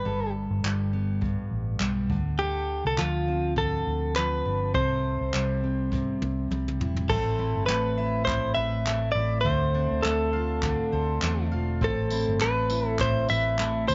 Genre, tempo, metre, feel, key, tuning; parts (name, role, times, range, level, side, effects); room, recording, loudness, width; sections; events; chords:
acoustic pop; 102 BPM; 4/4; swing 55% on 16ths; A4 = 444 Hz
direct-recorded clean electric guitar; melody; 0.0-13.9 s; F4 to E5; -30 LUFS; equal
picked steel-string acoustic guitar; accompaniment; 0.0-13.9 s; G2 to B4; -33 LUFS; equal
vintage muted fingered electric bass; bass; 0.0-13.9 s; E1 to E2; -32 LUFS; equal
jazz brush drum kit; drums; 0.6-13.9 s; crash cymbal, handclaps, kick drum, snare drum, tambourine, toms; -35 LUFS; equal
mandolin; arpeggios; 7.1-13.9 s; A3 to F5; -38 LUFS; equal; slapback echo
light reverb, small room ambience; nothing above 7.6 kHz; -26 LUFS; mono
0.0-7.1 A section; 7.1-13.9 B section
drum fill 5.9-7.1
0.0 Gadd9; 2.1 Dm7; 4.7 Am7/C; 7.1 Amadd9; 9.5 Dm7; 11.8 Amadd9